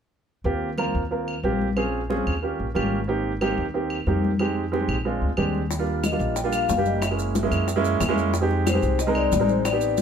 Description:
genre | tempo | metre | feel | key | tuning
Afro-Cuban jazz | 183 BPM | 4/4 | straight | Eb major | A4 = 440 Hz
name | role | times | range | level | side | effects
upright bass | bass | 0.4-10.0 s | Gb1 to Gb2 | -27 LUFS | equal | none
warm upright piano | accompaniment | 0.5-10.0 s | G3 to Bb4 | -25 LUFS | right 3 dB | none
congas | percussion | 0.5-10.0 s | none | -30 LUFS | left 3 dB | none
claves | percussion | 0.8-9.8 s | none | -34 LUFS | equal | none
bongos | percussion | 5.7-10.0 s | none | -31 LUFS | left 4 dB | none
maracas | percussion | 5.7-10.0 s | none | -37 LUFS | right 6 dB | none
vibraphone with medium mallets | melody | 6.1-10.0 s | C5 to G5 | -26 LUFS | left 7 dB | none
room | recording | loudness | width
light reverb | minimal, uncompressed stereo recording | -21 LUFS | side -7 dB against mid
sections
0.5-5.7 A section; 5.7-10.0 B section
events
none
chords
0.5 Eb69; 1.8 Bbm7; 2.4 Eb7; 3.1 Abmaj7; 4.4 Fm7; 5.1 Bb7; 5.7 Ebmaj7; 7.0 Gb9; 8.3 Fm7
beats
| 0.45 0.78 1.11 1.44 | 1.77 2.10 2.43 2.75 | 3.08 3.41 3.74 4.07 | 4.40 4.72 5.05 5.38 | 5.71 6.04 6.37 6.69 | 7.02 7.35 7.68 8.01 | 8.34 8.66 8.99 9.32 | 9.65 9.98

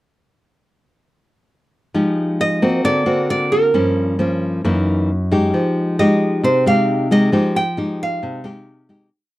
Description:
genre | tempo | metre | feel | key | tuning
bossa nova | 134 BPM | 4/4 | straight | F minor | A4 = 436 Hz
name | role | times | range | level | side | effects
nylon-string guitar | accompaniment | 1.9-9.1 s | Gb2 to G4 | -16 LUFS | left 1 dB | none
nylon-string guitar | melody | 2.4-8.9 s | A#4 to G5 | -19 LUFS | right 2 dB | none
room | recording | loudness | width
light reverb | dry, close 1970s-style studio recording | -15 LUFS | side -16 dB against mid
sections
1.9-9.1 A section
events
fade-out 7.3-9.1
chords
1.9 Fm9; 2.8 Daug7; 3.7 Gm7b5; 4.6 Gb13; 5.5 Fm9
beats
| 1.95 2.40 2.84 3.29 | 3.74 4.19 4.64 5.09 | 5.54 5.98 6.43 6.88 | 7.33 7.77 8.22 8.67

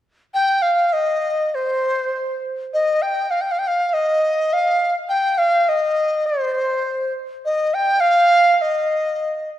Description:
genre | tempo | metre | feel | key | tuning
chinese traditional | 102 BPM | 4/4 | rubato | unclear | A4 = 440 Hz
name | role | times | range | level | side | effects
breathy mellow dizi | melody | 0.3-9.5 s | C5 to G5 | -17 LUFS | equal | none
room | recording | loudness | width
moderate scoring stage reverb, RT60 1.9 s | none | -17 LUFS | side -12 dB against mid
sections
0.3-9.6 A section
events
none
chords
none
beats
| 0.34 0.94 1.55 2.15 | 2.74 3.33 3.92 4.51 | 5.10 5.68 6.26 6.84 | 7.43 8.01 8.60 9.20

